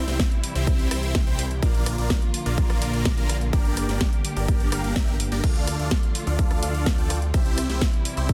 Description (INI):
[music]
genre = EDM, festival progressive house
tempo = 126 BPM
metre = 4/4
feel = straight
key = unclear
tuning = A4 = 440 Hz
[part]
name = warm studio string section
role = sustained chords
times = 0.0-8.3 s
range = C3 to G4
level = -36 LUFS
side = equal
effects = sidechain pumping
[part]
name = big supersaw lead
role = riff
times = 0.0-8.3 s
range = Bb3 to G5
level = -32 LUFS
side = equal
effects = phaser, sidechain pumping, tape echo
[part]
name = detuned saw bass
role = bass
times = 0.0-8.3 s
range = G1 to D2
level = -29 LUFS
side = equal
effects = chorus, sidechain pumping
[part]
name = house drum kit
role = drums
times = 0.1-8.3 s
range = crash cymbal, hi-hat, rim click, snare drum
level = -32 LUFS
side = equal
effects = none
[part]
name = electronic kick drum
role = drums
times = 0.2-8.3 s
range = none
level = -24 LUFS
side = equal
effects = none
[sound]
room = little or no reverb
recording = dense, heavily limited modern master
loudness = -23 LUFS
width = mono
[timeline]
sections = 0.0-8.3 A section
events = none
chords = 0.0 C; 1.6 Bb; 3.5 Gm; 5.4 Dm; 7.3 C